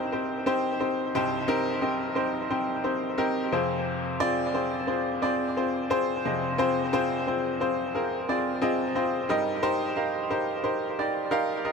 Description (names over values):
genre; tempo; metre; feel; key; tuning
pop; 88 BPM; 4/4; straight; unclear; A4 = 440 Hz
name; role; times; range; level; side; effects
bright upright piano; solo; 0.0-11.7 s; C2 to F5; -25 LUFS; left 1 dB; tape echo
room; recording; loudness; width
light reverb; echo-heavy mix; -25 LUFS; side -5 dB against mid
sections
0.0-11.7 A section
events
none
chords
0.0 Cm; 3.5 Fm; 9.3 Eb/G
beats
0.47 | 1.15 1.83 2.51 3.19 | 3.86 4.54 5.22 5.90 | 6.58 7.25 7.93 8.61 | 9.29 9.96 10.64 11.32